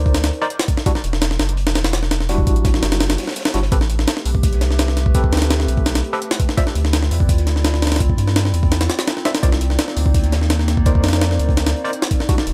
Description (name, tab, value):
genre	drum and bass, jungle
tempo	168 BPM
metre	4/4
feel	straight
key	unclear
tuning	A4 = 440 Hz
part	overdriven tine electric piano	stabs	0.0-6.6, 9.3-12.3 s	G3 to E5	-27 LUFS	equal	fast tremolo, dub echo
part	saturated sub bass	bass	0.0-12.5 s	E1 to G2	-20 LUFS	equal	none
part	crunchy breakbeat drum kit	drums	0.1-12.5 s	hi-hat, snare drum	-36 LUFS	equal	none
part	jungle sampler-style drum kit	drums	0.1-12.5 s	hi-hat, kick drum, snare drum	-20 LUFS	equal	none
part	warbly tape-like pad	sustained chords	3.9-12.5 s	G3 to D5	-30 LUFS	equal	chorus, built-in reverb
room	digital ambience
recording	none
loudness	-18 LUFS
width	mono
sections	0.0-12.5 A section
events	break 3.0-3.7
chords	0.0 Cm9; 0.9 Em9; 3.7 Am9; 6.6 Dm9; 9.4 Cm9